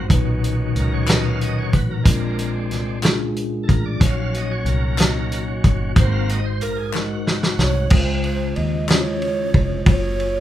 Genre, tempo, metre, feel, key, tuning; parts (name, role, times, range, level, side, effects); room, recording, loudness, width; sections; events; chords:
slow gospel; 62 BPM (dotted quarters); 6/8; straight; Db major; A4 = 440 Hz
mellow tine electric piano; accompaniment; 0.0-10.4 s; Ab2 to Eb5; -24 LUFS; left 2 dB; medium stereo tremolo
bright tonewheel organ; sustained chords; 0.0-7.9 s; Eb3 to F5; -28 LUFS; right 2 dB; slow rotary speaker, overdrive
fingered electric bass; bass; 0.0-10.4 s; F1 to Eb2; -24 LUFS; equal
warm soul drum kit; drums; 0.1-10.3 s; crash cymbal, hi-hat, kick drum, ride cymbal, snare drum; -18 LUFS; equal
group handclap; percussion; 1.1-9.2 s; -30 LUFS; left 4 dB
breathy long shakuhachi; melody; 6.6-10.4 s; Bb4 to Eb5; -26 LUFS; right 4 dB
light reverb; band playing live in one room; -17 LUFS; side -12 dB against mid
0.0-7.9 A section; 7.9-10.4 B section
tonewheel organ solo 0.0-7.9; drum fill 6.9-7.9
0.1 Cbmaj7; 2.1 Bb7; 4.0 Ebm7/Bb; 6.0 Ab7; 7.9 Dbmaj7; 9.9 Gbmaj7